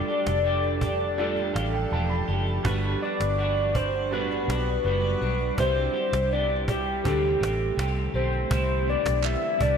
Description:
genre	indie pop, bedroom pop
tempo	82 BPM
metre	4/4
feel	straight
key	G major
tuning	A4 = 440 Hz
part	soft octave-layered synth lead	melody	0.0-9.8 s	G4 to E5	-27 LUFS	left 2 dB	lush chorus, digital delay
part	electric guitar through a small old amp	accompaniment	0.0-9.8 s	C3 to G4	-32 LUFS	left 1 dB	lush chorus, warbly pitch drift
part	warm upright piano	accompaniment	0.0-8.5 s	F#3 to B5	-34 LUFS	right 6 dB	cassette tape
part	granular cloud pad	sustained chords	0.0-9.8 s	C3 to D5	-35 LUFS	equal	built-in reverb, lush chorus
part	cajon	drums	0.1-9.8 s	none	-31 LUFS	right 1 dB	none
part	vintage muted fingered electric bass	bass	0.3-9.8 s	E1 to D2	-28 LUFS	right 1 dB	none
part	group handclap	percussion	9.2-9.4 s	none	-36 LUFS	right 11 dB	none
room	moderate lush hall reverb, RT60 1.8 s, small room reverb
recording	bright 1980s-style digital production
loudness	-23 LUFS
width	side -7 dB against mid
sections	0.0-8.5 A section; 8.5-9.8 B section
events	upright piano fill 1.2-2.6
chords	0.0 F69; 2.6 Gmaj7; 5.6 Cmaj7; 7.0 D7sus4; 8.5 Cmaj7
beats	0.45 1.18 1.92 | 2.65 3.38 4.12 4.85 | 5.58 6.31 7.05 7.78 | 8.51 9.24

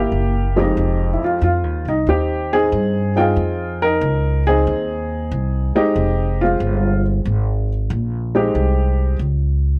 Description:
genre	jazz piano trio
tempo	92 BPM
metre	4/4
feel	swing 69% on 8ths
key	F minor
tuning	A4 = 440 Hz
part	dark baby grand piano	melody	0.0-9.2 s	F2 to G5	-21 LUFS	equal	none
part	upright bass	bass	0.0-9.8 s	F1 to G2	-21 LUFS	equal	none
room	light reverb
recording	none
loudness	-19 LUFS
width	mono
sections	0.8-9.8 A section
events	none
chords	0.0 C7; 0.8 Fm7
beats	0.12 | 0.77 1.42 2.07 2.72 | 3.37 4.02 4.67 5.32 | 5.96 6.61 7.26 7.91 | 8.55 9.20

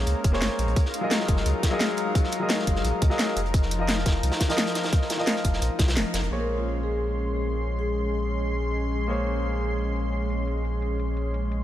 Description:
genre	liquid drum and bass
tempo	173 BPM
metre	4/4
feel	straight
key	Bb minor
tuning	A4 = 440 Hz
part	warm concert grand piano	accompaniment	0.0-11.6 s	F3 to Eb5	-30 LUFS	left 1 dB	low-pass filter, digital delay
part	lush unison pad	sustained chords	0.0-11.6 s	F3 to C6	-31 LUFS	equal	chorus
part	warm sub bass	bass	0.0-11.6 s	Eb1 to Db2	-27 LUFS	equal	none
part	crunchy breakbeat drum kit	drums	0.1-6.3 s	hi-hat, snare drum	-32 LUFS	equal	high-pass filter on hats, high-pass filter on snare, high-pass filter on room
part	garage drum kit	drums	0.1-11.6 s	hi-hat, snare drum	-29 LUFS	equal	low-pass filter on hats, low-pass filter on cymbals, low-pass filter on snare, low-pass filter on room
part	electronic kick drum	drums	0.2-5.9 s	none	-23 LUFS	equal	none
part	vibraphone with soft mallets	melody	6.4-8.3 s	F4 to Bb4	-34 LUFS	left 2 dB	digital delay
room	light reverb, small room ambience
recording	none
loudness	-23 LUFS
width	side -12 dB against mid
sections	0.0-6.3 A section; 6.3-11.6 B section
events	band accent 6.0; filter sweep on drum 6.3-11.6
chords	0.0 Bbm9; 0.8 Gbmaj13; 3.4 F7sus4; 6.3 Bbm9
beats	0.07 0.42 | 0.77 1.11 1.46 1.80 | 2.15 2.50 2.85 3.19 | 3.54 3.89 4.23 4.58 | 4.93 5.27 5.62 5.97 | 6.31 6.66 7.01 7.35 | 7.70 8.05 8.39 8.74 | 9.09 9.44 9.78 10.13 | 10.48 10.82 11.17 11.52

